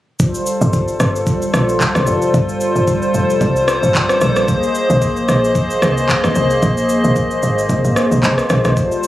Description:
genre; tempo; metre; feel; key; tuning
amapiano; 112 BPM; 4/4; swing 55% on 16ths; G phrygian; A4 = 443 Hz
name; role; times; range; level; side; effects
hollow soft pad; sustained chords; 0.2-9.1 s; G3 to Eb5; -16 LUFS; left 1 dB; chorus
afro-pop drum kit; drums; 0.2-9.1 s; handclaps, kick drum, rim click, shaker; -19 LUFS; equal; none
woody log drum bass; bass; 0.6-8.8 s; F1 to D2; -18 LUFS; equal; none
room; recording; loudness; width
little or no reverb; recorded on a phone in the room, studio ambience, compression; -13 LUFS; side -14 dB against mid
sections
0.2-9.1 A section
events
drop 0.2-9.1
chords
0.2 G9sus4; 4.5 Bb9sus4

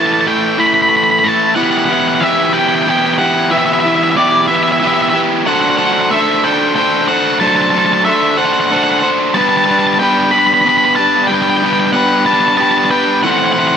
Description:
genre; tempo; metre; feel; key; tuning
rock; 62 BPM (dotted quarters); 6/8; straight; unclear; A4 = 440 Hz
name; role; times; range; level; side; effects
octave-fuzz lead guitar; melody; 0.0-13.7 s; D5 to B5; -13 LUFS; equal; distortion, digital delay
overdriven electric guitar; riff; 0.0-13.8 s; A2 to C5; -13 LUFS; equal; none
room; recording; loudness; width
light reverb; none; -10 LUFS; side -8 dB against mid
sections
0.0-1.6 A section; 1.6-13.8 B section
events
build-up 0.0-1.6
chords
0.0 A5; 1.6 Em; 5.5 D7/F#; 9.4 G; 13.2 Am

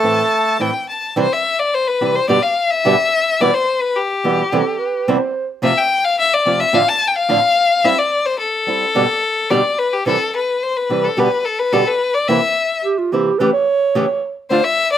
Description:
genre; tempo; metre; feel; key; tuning
tango; 108 BPM; 4/4; rubato; C major; A4 = 440 Hz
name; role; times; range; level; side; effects
bandoneon; melody; 0.0-0.6 s; A3 to A4; -15 LUFS; right 1 dB; none
clear violin; second line; 0.0-15.0 s; G4 to A5; -16 LUFS; left 4 dB; none
flamenco guitar; accompaniment; 0.0-14.6 s; E2 to G4; -17 LUFS; right 2 dB; none
breathy clarinet; second line; 4.5-5.5, 12.8-14.3 s; F4 to C#5; -18 LUFS; right 5 dB; slapback echo
room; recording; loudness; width
little or no reverb; recorded outdoors, with no room sound; -14 LUFS; side -10 dB against mid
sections
0.0-1.2 A section; 1.2-15.0 B section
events
violin solo 1.2-15.0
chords
0.0 Am; 1.2 C; 2.3 G; 3.4 Em; 4.5 C/E; 5.6 F; 6.7 Dm/F; 7.8 C/G; 9.0 G; 10.1 C; 11.2 G/B; 12.3 C7; 13.4 A7/C#

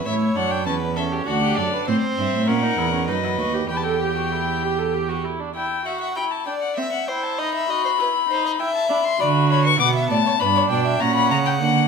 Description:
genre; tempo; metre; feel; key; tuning
classical, baroque-style fugue for string quartet; 99 BPM; 3/4; straight; E minor; A4 = 440 Hz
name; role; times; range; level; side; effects
rich violin; melody; 0.0-11.9 s; C5 to D6; -23 LUFS; left 9 dB; none
warm violin; second line; 0.0-11.9 s; F#4 to G5; -26 LUFS; left 1 dB; none
rich cello; bass; 0.0-5.2, 9.2-11.9 s; D2 to D3; -23 LUFS; right 4 dB; none
rich viola; accompaniment; 0.1-11.9 s; A#3 to B4; -25 LUFS; right 4 dB; none
room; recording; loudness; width
moderate recital hall reverb, RT60 1.5 s; none; -19 LUFS; side -5 dB against mid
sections
0.0-5.6 A section; 5.6-11.9 B section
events
none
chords
0.1 A7; 1.3 D; 1.9 Am; 2.5 F#7/A#; 3.1 B/F#; 3.7 Em; 6.8 Am/C; 7.4 B/D#; 8.6 Em; 9.2 Bm/D; 10.4 Em/G; 11.0 F#/A#

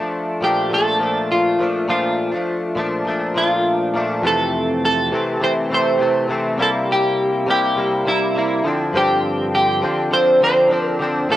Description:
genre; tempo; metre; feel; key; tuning
indie pop; 102 BPM; 4/4; straight; F major; A4 = 438 Hz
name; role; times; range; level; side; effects
direct-recorded clean electric guitar; accompaniment; 0.0-11.4 s; F2 to E4; -19 LUFS; left 1 dB; analog chorus, vibrato effect, cassette tape
semi-hollow electric guitar; melody; 0.4-11.4 s; E4 to C5; -18 LUFS; right 1 dB; wide subtle chorus, cassette tape, analog delay
room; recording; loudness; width
moderate spring reverb, RT60 1.1 s; home recording on cassette; -16 LUFS; side -14 dB against mid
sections
0.0-4.2 A section; 4.2-11.4 B section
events
none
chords
0.0 Bbmaj7; 4.2 Fmaj7; 6.6 C7; 8.7 G7sus4

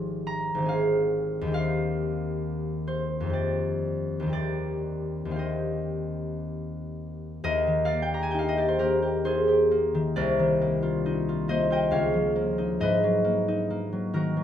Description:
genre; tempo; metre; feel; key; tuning
classical, solo harp piece; 58-71 BPM; 3/4; rubato; Eb major; A4 = 443 Hz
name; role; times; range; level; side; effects
concert harp; solo; 0.0-14.4 s; Ab1 to C6; -24 LUFS; left 1 dB; none
room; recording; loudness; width
light reverb; close, detailed microphones; -24 LUFS; side -10 dB against mid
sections
0.0-7.4 A section; 7.4-14.4 A section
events
none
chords
0.0 Ebadd9/Ab; 0.7 Fm7/Ab; 1.6 Eb69; 3.4 Fsus2; 7.4 Ebmaj7; 10.1 Cm11; 11.9 Db69; 12.8 Abm9

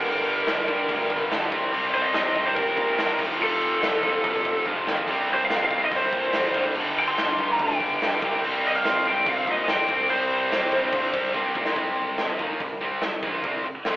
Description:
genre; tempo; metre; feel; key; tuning
hard rock; 144 BPM; 4/4; straight; unclear; A4 = 440 Hz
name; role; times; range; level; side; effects
lead guitar through a small cranked amp; melody; 0.0-11.3 s; A4 to C6; -24 LUFS; equal; overdrive
high-gain distorted guitar; riff; 0.0-14.0 s; F2 to F4; -26 LUFS; equal; distortion
high-gain distorted guitar; riff; 0.0-11.6 s; F2 to C4; -32 LUFS; right 1 dB; none
fuzz picked electric bass; bass; 0.0-14.0 s; F1 to C3; -34 LUFS; equal; overdrive
big rock drum kit; drums; 0.1-13.9 s; crash cymbal, hi-hat, kick drum, snare drum; -28 LUFS; equal; none
room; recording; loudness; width
light reverb; band playing live in one room, telephone sound; -21 LUFS; side -17 dB against mid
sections
0.0-11.8 A section; 11.8-14.0 B section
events
drum fill 4.7-5.1, 11.4-11.8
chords
0.0 Gm; 1.5 Cm; 3.2 F; 5.1 C5; 6.5 G5; 8.2 C5; 11.8 Cm

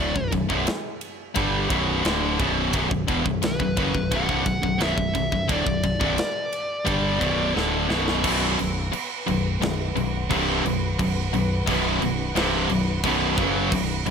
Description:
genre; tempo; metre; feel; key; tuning
heavy metal; 87 BPM; 4/4; straight; B phrygian; A4 = 440 Hz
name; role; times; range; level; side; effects
high-gain lead guitar; melody; 0.0-7.5 s; B4 to F#5; -29 LUFS; left 1 dB; distortion, tape echo
distorted electric guitar; riff; 0.0-14.1 s; B1 to G3; -27 LUFS; right 11 dB; overdrive
tight distorted guitar; riff; 0.0-14.1 s; B1 to G3; -26 LUFS; left 12 dB; distortion
growling picked electric bass; bass; 0.0-14.1 s; B0 to G1; -28 LUFS; equal; overdrive
tight metal drum kit; drums; 0.2-14.1 s; crash cymbal, kick drum, ride cymbal, snare drum; -28 LUFS; right 1 dB; none
warm symphonic string section; sustained chords; 8.2-14.1 s; B3 to F#5; -34 LUFS; left 1 dB; none
distorted electric guitar; riff; 8.2-14.1 s; B1 to F#3; -30 LUFS; right 2 dB; overdrive
room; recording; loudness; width
small room ambience; none; -21 LUFS; side -6 dB against mid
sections
0.0-8.2 A section; 8.2-14.1 B section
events
drum fill 7.6-8.2; half time 8.2-14.1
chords
0.0 Bm; 8.2 B5

